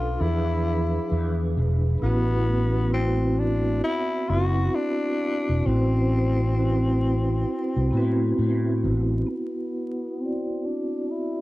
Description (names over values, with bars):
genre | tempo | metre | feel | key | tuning
lo-fi hip hop | 66 BPM | 4/4 | swing 63% on 16ths | A dorian | A4 = 440 Hz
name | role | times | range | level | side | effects
growling tenor saxophone | melody | 0.0-11.4 s | B3 to F#4 | -30 LUFS | left 2 dB | low-pass filter
vibraphone with medium mallets | accompaniment | 0.0-11.4 s | F3 to D5 | -26 LUFS | right 1 dB | cassette tape, low-pass filter
fretless electric bass | bass | 0.0-9.2 s | E1 to A2 | -23 LUFS | equal | ensemble chorus
room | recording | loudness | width
moderate studio reverb, RT60 0.5 s | dark, warm production, vinyl crackle | -22 LUFS | side -18 dB against mid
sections
0.0-9.3 A section; 9.3-11.4 B section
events
filter sweep 9.3-11.4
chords
0.2 E7b9; 2.0 Am69; 9.3 Am69 (rootless)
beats
0.20 1.11 | 2.02 2.93 3.83 4.74 | 5.65 6.56 7.47 8.38 | 9.29 10.20 11.11